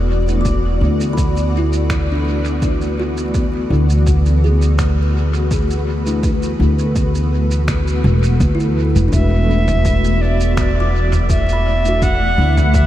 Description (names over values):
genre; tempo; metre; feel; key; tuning
ambient dub; 83 BPM; 4/4; straight; E mixolydian; A4 = 438 Hz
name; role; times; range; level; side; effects
granular cloud pad; sustained chords; 0.0-12.9 s; E3 to D5; -22 LUFS; left 1 dB; built-in reverb, analog chorus
upright bass; bass; 0.0-12.9 s; E1 to D2; -16 LUFS; equal; none
mellow tine electric piano; stabs; 0.3-12.6 s; A3 to E4; -28 LUFS; left 3 dB; none
lo-fi sampler-style drum kit; drums; 0.3-12.9 s; finger snaps, shaker, toms; -29 LUFS; right 1 dB; small room ambience, dub echo
kalimba; arpeggios; 0.4-12.9 s; D4 to D6; -27 LUFS; equal; ping-pong delay
electronic kick drum; drums; 0.5-12.9 s; none; -19 LUFS; equal; small room ambience
bright reedy silver concert flute; melody; 9.1-12.9 s; D5 to F#5; -20 LUFS; right 2 dB; dub echo
room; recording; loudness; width
light reverb, digital ambience; vinyl crackle; -14 LUFS; side -13 dB against mid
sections
0.0-12.9 A section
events
none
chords
0.0 E7sus4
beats
| 0.45 1.17 1.90 2.62 | 3.34 4.07 4.79 5.51 | 6.23 6.96 7.68 8.40 | 9.13 9.85 10.57 11.29 | 12.02 12.74